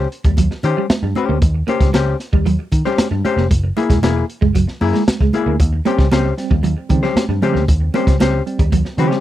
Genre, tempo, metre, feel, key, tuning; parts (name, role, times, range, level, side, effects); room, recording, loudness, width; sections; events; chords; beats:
funk; 115 BPM; 4/4; straight; Eb mixolydian; A4 = 441 Hz
hollow-body jazz guitar; accompaniment; 0.0-9.2 s; Bb3 to C5; -19 LUFS; left 6 dB
clean electric guitar; riff; 0.0-9.2 s; Gb3 to Bb3; -22 LUFS; right 4 dB; ensemble chorus
vintage muted picked electric bass; bass; 0.0-9.1 s; Fb1 to Eb3; -18 LUFS; equal
crunchy breakbeat drum kit; drums; 0.1-9.2 s; hi-hat, kick drum, snare drum; -17 LUFS; equal
congas; percussion; 0.4-8.8 s; -24 LUFS; right 4 dB
tine electric piano; stabs; 5.9-9.2 s; Db3 to C4; -22 LUFS; right 5 dB; medium stereo tremolo, tape echo
little or no reverb; dry, close 1970s-style studio recording; -14 LUFS; side -13 dB against mid
0.0-9.2 A section
0.0 Eb13; 3.5 Gb9; 5.6 Eb13
0.38 0.90 | 1.42 1.94 2.46 2.99 | 3.51 4.03 4.55 5.07 | 5.59 6.12 6.64 7.16 | 7.68 8.20 8.72